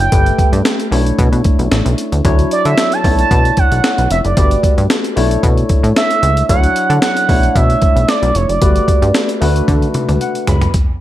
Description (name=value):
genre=early-eighties boogie funk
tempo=113 BPM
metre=4/4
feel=straight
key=unclear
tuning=A4 = 439 Hz
part: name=expressive synth lead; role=melody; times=0.0-9.3 s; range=C#5 to A5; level=-16 LUFS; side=right 3 dB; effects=chorus, tape echo
part: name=barky tine electric piano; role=accompaniment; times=0.0-10.7 s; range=F#3 to B5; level=-19 LUFS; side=left 2 dB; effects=overdrive, lush chorus
part: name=plucky analog bass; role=bass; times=0.0-10.7 s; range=F1 to D3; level=-14 LUFS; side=equal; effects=none
part: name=breakbeat sampler-style drum kit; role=drums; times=0.0-10.9 s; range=hi-hat, kick drum, snare drum, toms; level=-14 LUFS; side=equal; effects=gated reverb
room=little or no reverb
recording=none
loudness=-11 LUFS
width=side -13 dB against mid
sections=0.0-10.7 A section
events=drum fill 9.7-10.7; tine electric piano fill 9.9-10.7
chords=0.1 Gadd9; 0.9 Bm11; 2.2 Dmaj9; 3.0 Bm11; 4.4 Gmaj9; 5.2 Bm11; 6.5 Dmaj9; 7.3 Bm11; 8.6 Gmaj9; 9.4 D6